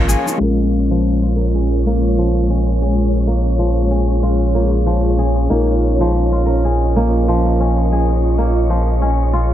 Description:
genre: downtempo.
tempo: 94 BPM.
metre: 4/4.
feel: swing 58% on 16ths.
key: Bb minor.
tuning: A4 = 438 Hz.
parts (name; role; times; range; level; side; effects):
ethereal airy pad; sustained chords; 0.0-9.5 s; Ab3 to F5; -21 LUFS; right 1 dB; ensemble chorus, built-in reverb, tremolo.
kora; arpeggios; 0.0-9.5 s; F3 to Bb4; -21 LUFS; left 1 dB; low-pass filter, analog delay.
warm sub bass; bass; 0.0-9.5 s; Ab1 to Bb1; -16 LUFS; equal; none.
wind-like tuned noise texture; texture; 0.0-9.5 s; Db4 to Db5; -25 LUFS; right 2 dB; built-in reverb.
felt-muted upright piano; accompaniment; 0.4-9.5 s; Ab3 to Bb4; -24 LUFS; left 3 dB; low-pass filter, dub echo.
room: moderate echo chamber reverb, RT60 2.4 s.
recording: echo-heavy mix, low-pass filter.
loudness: -14 LUFS.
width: side -12 dB against mid.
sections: 0.4-9.5 A section.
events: filter sweep on felt piano 0.4-9.5.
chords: 0.4 Bbm7; 5.5 Ebsus2/Bb.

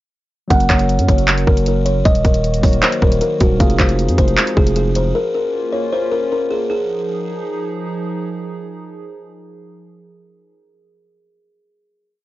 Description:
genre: hip hop, trap.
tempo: 155 BPM.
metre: 4/4.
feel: half-time.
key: F phrygian.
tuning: A4 = 440 Hz.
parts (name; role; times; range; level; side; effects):
buzzing kalimba; melody; 0.5-7.8 s; Gb4 to Gb5; -19 LUFS; left 1 dB; low-pass filter, analog delay.
mellow tine electric piano; accompaniment; 0.5-5.2 s; Gb3 to Db5; -23 LUFS; right 1 dB; medium stereo tremolo, low-pass filter.
hollow soft pad; sustained chords; 1.0-10.6 s; Eb3 to Bb4; -28 LUFS; equal; chorus.
growling 808-style bass; bass; 0.5-5.1 s; Eb1 to Gb2; -18 LUFS; equal; none.
trap drum kit; drums; 0.5-5.0 s; handclaps, hi-hat, kick drum; -15 LUFS; equal; overdrive.
room: little or no reverb.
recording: dry, gritty hardware recording, nothing above 7.5 kHz.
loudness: -14 LUFS.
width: side -16 dB against mid.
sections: 0.5-6.7 hook; 6.7-9.8 final chord.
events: none.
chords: 0.5 Gb; 2.1 Ebm; 3.6 Fm7; 5.2 Bbm; 6.7 Fm7.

